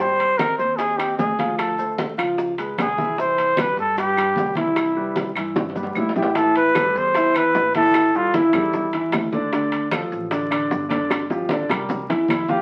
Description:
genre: Afro-Cuban jazz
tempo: 151 BPM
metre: 4/4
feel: straight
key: unclear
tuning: A4 = 440 Hz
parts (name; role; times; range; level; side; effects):
- breathy trumpet; melody; 0.0-9.1, 12.3-12.6 s; E4 to C5; -22 LUFS; equal; none
- warm grand piano; accompaniment; 0.0-12.6 s; D3 to G5; -26 LUFS; equal; none
- upright bass; bass; 0.0-12.6 s; G1 to A2; -36 LUFS; equal; none
- bongos; percussion; 0.0-12.6 s; none; -31 LUFS; equal; none
- congas; percussion; 0.0-12.6 s; none; -32 LUFS; equal; none
- timbales; percussion; 0.2-12.5 s; none; -32 LUFS; equal; none
- claves; percussion; 0.4-12.5 s; none; -34 LUFS; equal; none
- maracas; percussion; 0.4-12.6 s; none; -55 LUFS; equal; none
room: wet studio reverb, RT60 0.6 s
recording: very old 78 rpm record, vinyl crackle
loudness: -21 LUFS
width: mono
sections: 0.0-6.4 A section; 6.4-12.6 B section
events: drum fill 5.6-6.4, 11.1-12.6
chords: 0.0 Ab6; 1.6 Dm7; 2.4 Db7; 3.2 Cmaj7; 6.4 Am9; 7.9 A5; 9.5 Dm; 11.1 Gm7; 11.9 C7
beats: | 0.00 0.40 0.79 1.19 | 1.59 1.99 2.38 2.78 | 3.18 3.57 3.97 4.37 | 4.77 5.16 5.56 5.96 | 6.36 6.75 7.15 7.54 | 7.94 8.34 8.73 9.13 | 9.53 9.92 10.32 10.71 | 11.11 11.51 11.90 12.30

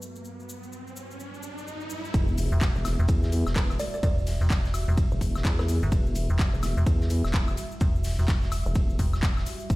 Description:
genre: bass house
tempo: 127 BPM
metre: 4/4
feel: swing 61% on 16ths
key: E minor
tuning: A4 = 441 Hz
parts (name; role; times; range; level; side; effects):
- dark analog pad; sustained chords; 0.0-9.8 s; G3 to A5; -38 LUFS; right 1 dB; chorus, sidechain pumping
- cabasa; percussion; 0.0-9.8 s; none; -47 LUFS; left 2 dB; none
- riser and sub drop; sound effects; 0.2-4.0 s; none; -36 LUFS; equal; none
- vowel-sweep wobble bass; bass; 2.1-9.8 s; E1 to E2; -26 LUFS; equal; chorus, tube saturation, sidechain pumping
- electronic kick drum; drums; 2.1-9.8 s; none; -25 LUFS; equal; overdrive
- house drum kit; drums; 2.1-9.8 s; handclaps, hi-hat, ride cymbal, woodblock; -36 LUFS; left 1 dB; overdrive
- loose indie drum kit; drums; 2.1-9.8 s; hi-hat, shaker, snare drum; -44 LUFS; equal; none
- metallic FM bass; bass; 2.5-9.4 s; E1 to G1; -25 LUFS; equal; sidechain pumping
- kalimba; melody; 3.6-6.1 s; B4 to D5; -37 LUFS; right 2 dB; ping-pong delay
room: small room ambience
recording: played on a big sound system in a bare room, stone room reverb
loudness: -23 LUFS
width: side -20 dB against mid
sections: 0.0-2.1 A section; 2.1-9.8 B section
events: riser 0.2-2.1; drop 2.1-9.8; impact 2.1-4.0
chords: 0.0 Emadd9 (rootless); 2.1 Emadd9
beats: | 0.25 0.72 1.20 1.67 | 2.14 2.61 3.09 3.56 | 4.03 4.50 4.98 5.45 | 5.92 6.39 6.87 7.34 | 7.81 8.28 8.76 9.23 | 9.70

